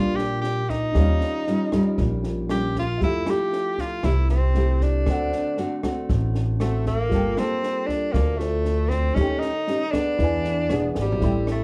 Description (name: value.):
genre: bossa nova.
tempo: 117 BPM.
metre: 4/4.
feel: straight.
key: unclear.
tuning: A4 = 440 Hz.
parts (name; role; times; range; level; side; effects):
edgy tenor saxophone; melody; 0.0-11.6 s; G3 to G4; -28 LUFS; equal; none.
dark grand piano; accompaniment; 0.0-11.6 s; D4 to C6; -35 LUFS; equal; none.
nylon-string guitar; accompaniment; 0.0-11.6 s; A2 to A4; -29 LUFS; equal; none.
upright bass; bass; 0.0-11.6 s; E1 to F2; -26 LUFS; equal; none.
open jazz drum kit; drums; 0.2-11.6 s; kick drum, rim click, snare drum, toms; -32 LUFS; equal; none.
room: wet studio ambience, RT60 0.5 s.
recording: heard from further back in the room.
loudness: -23 LUFS.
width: mono.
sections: 0.0-11.2 A section.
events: drum fill 11.0.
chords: 0.0 Ebmaj9; 1.0 Eb9; 3.0 Fmaj9; 5.1 D7; 7.1 Gm9; 9.2 Eb7#11; 10.2 E7.